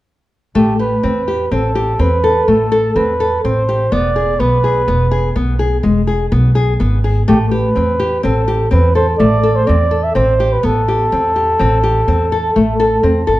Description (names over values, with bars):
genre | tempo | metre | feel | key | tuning
contemporary instrumental, chamber music in an uneven meter | 125 BPM | 7/4 | straight | A minor | A4 = 440 Hz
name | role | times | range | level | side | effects
mellow flugelhorn | melody | 0.6-13.4 s | G4 to E5 | -16 LUFS | right 2 dB | none
nylon-string guitar | arpeggios | 0.6-13.4 s | G#3 to A4 | -16 LUFS | left 2 dB | none
upright bass | bass | 0.6-13.4 s | E1 to E2 | -16 LUFS | equal | none
room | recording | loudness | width
wet recital hall reverb, RT60 1.4 s | dark, warm production | -12 LUFS | side -16 dB against mid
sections
0.6-13.4 A section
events
none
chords
0.6 Am7; 3.9 E; 7.3 Am7